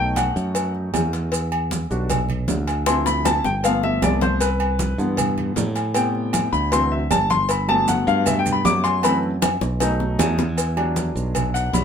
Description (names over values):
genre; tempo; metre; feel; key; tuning
Afro-Cuban jazz; 156 BPM; 4/4; straight; G major; A4 = 440 Hz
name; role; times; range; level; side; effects
clear grand piano; accompaniment; 0.0-11.8 s; C3 to D6; -22 LUFS; left 2 dB; none
modern bright fingered electric bass; bass; 0.0-11.8 s; G1 to A2; -23 LUFS; right 1 dB; none
congas; percussion; 0.2-11.8 s; none; -29 LUFS; equal; none
cowbell and bongos; percussion; 0.2-11.8 s; none; -28 LUFS; left 3 dB; none
maracas; percussion; 0.2-11.8 s; none; -31 LUFS; right 7 dB; none
timbales and agogo bells; percussion; 0.2-11.8 s; none; -26 LUFS; right 1 dB; none
room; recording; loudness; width
wet small room reverb, RT60 0.6 s; minimal, uncompressed stereo recording; -18 LUFS; side -7 dB against mid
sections
0.0-10.6 A section; 10.6-11.8 A section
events
grand piano solo 0.0-11.8; drum fill 2.9-4.4, 9.4-10.6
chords
0.0 B7; 1.3 Em7; 2.9 Dm7; 4.4 Cmaj7; 6.0 Am7; 6.7 D7; 7.5 Gmaj7; 9.0 F#m7b5; 9.8 B7; 10.6 Em7